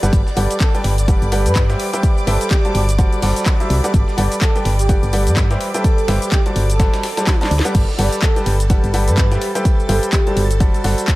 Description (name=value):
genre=piano house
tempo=126 BPM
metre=4/4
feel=swing 58% on 16ths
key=G major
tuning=A4 = 442 Hz
part: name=string machine, violins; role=sustained chords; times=0.0-11.2 s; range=A4 to D6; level=-28 LUFS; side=equal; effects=ensemble chorus, sidechain pumping
part: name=clear baby grand piano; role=riff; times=0.0-11.2 s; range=G3 to A5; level=-22 LUFS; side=equal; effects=sidechain pumping, analog delay
part: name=solid FM bass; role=bass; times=0.0-10.9 s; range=G1 to G2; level=-17 LUFS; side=equal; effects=sidechain pumping
part: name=dusty soul sampler-style drum kit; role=drums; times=0.0-11.2 s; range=hi-hat, snare drum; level=-33 LUFS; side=equal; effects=none
part: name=house drum kit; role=drums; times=0.0-11.2 s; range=crash cymbal, handclaps, hi-hat, shaker, snare drum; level=-25 LUFS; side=left 1 dB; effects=overdrive
part: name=electronic kick drum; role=drums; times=0.1-11.2 s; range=none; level=-15 LUFS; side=equal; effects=overdrive
part: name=breathy flute-like synth lead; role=melody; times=0.4-10.4 s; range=G4 to D5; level=-26 LUFS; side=right 1 dB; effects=analog chorus, cassette tape, analog delay
room=light reverb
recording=echo-heavy mix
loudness=-14 LUFS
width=side -18 dB against mid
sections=0.0-11.2 A section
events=drum fill 7.3-7.7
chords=0.1 Gmaj9; 6.6 D7/G; 7.7 Gmaj9